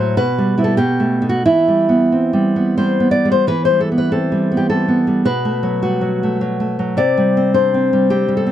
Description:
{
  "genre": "romantic piece for solo classical guitar",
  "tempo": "87-110 BPM",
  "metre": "3/4",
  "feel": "rubato",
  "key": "E minor",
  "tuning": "A4 = 440 Hz",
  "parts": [
    { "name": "nylon-string guitar", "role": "solo", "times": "0.0-8.5 s", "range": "A2 to D5", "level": "-14 LUFS", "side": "equal", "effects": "none" }
  ],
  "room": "light reverb",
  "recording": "faint mains hum",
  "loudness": "-13 LUFS",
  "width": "side -11 dB against mid",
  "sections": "0.0-3.4 A section; 3.4-8.5 B section",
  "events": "none",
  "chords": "0.2 Em/B; 0.8 B7; 1.4 Em; 5.2 B5; 7.0 C5",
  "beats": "0.16 0.79 | 1.44 2.12 2.77 | 3.45 4.09 4.68 | 5.25 5.82 6.41 | 6.98 7.55 8.10"
}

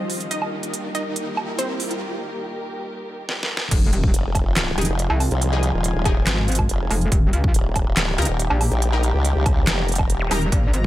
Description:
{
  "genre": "heavy wobble dubstep",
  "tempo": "141 BPM",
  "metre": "4/4",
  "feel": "half-time",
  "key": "unclear",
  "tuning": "A4 = 440 Hz",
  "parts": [
    { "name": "wide unison pluck", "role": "melody", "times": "0.0-2.0 s", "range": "G3 to Eb5", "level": "-29 LUFS", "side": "right 1 dB", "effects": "tape echo" },
    { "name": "dark studio string section", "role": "sustained chords", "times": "0.0-10.9 s", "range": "Bb2 to C5", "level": "-30 LUFS", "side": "equal", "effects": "sidechain pumping, low-pass filter" },
    { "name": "riser, impact and zap", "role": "sound effects", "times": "0.0-5.4, 10.2-10.3 s", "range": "none", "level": "-33 LUFS", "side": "equal", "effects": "none" },
    { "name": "granular cloud pad", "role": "texture", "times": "0.0-10.9 s", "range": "F4 to Bb5", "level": "-34 LUFS", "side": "equal", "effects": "built-in reverb, sidechain pumping" },
    { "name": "dubstep drum kit", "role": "drums", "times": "0.1-10.8 s", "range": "crash cymbal, handclaps, hi-hat, snare drum, woodblock", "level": "-24 LUFS", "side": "right 1 dB", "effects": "none" },
    { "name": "metallic wobble bass", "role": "bass", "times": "3.7-10.9 s", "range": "Eb1 to Db2", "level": "-20 LUFS", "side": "equal", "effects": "chorus, overdrive" },
    { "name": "electronic kick drum", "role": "drums", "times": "3.7-10.9 s", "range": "none", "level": "-20 LUFS", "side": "equal", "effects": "none" },
    { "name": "formant-sweep wobble bass", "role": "bass", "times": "4.1-10.3 s", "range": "Eb1 to Db2", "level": "-21 LUFS", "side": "equal", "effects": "chorus, overdrive" },
    { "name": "orchestra-hit-like synth stab", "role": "stabs", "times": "4.8-10.5 s", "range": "Eb4 to Bb4", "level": "-29 LUFS", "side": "left 4 dB", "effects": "built-in reverb, tape echo" }
  ],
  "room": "digital ambience",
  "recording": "high-pass filter",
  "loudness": "-19 LUFS",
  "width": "side -15 dB against mid",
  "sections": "0.0-3.7 A section; 3.7-10.9 B section",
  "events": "build-up 0.0-3.7; riser 0.0-2.0; filter sweep 0.0-3.7; break 2.0-3.7; drum fill 3.3-3.7; drop 3.7-10.9; impact 3.7-5.4",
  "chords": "0.3 Eb; 3.7 Fm7; 7.1 Eb",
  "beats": "| 0.31 0.73 1.16 1.59 | 2.01 2.44 2.86 3.29 | 3.71 4.14 4.57 4.99 | 5.42 5.84 6.27 6.69 | 7.12 7.54 7.97 8.39 | 8.82 9.25 9.67 10.10 | 10.52"
}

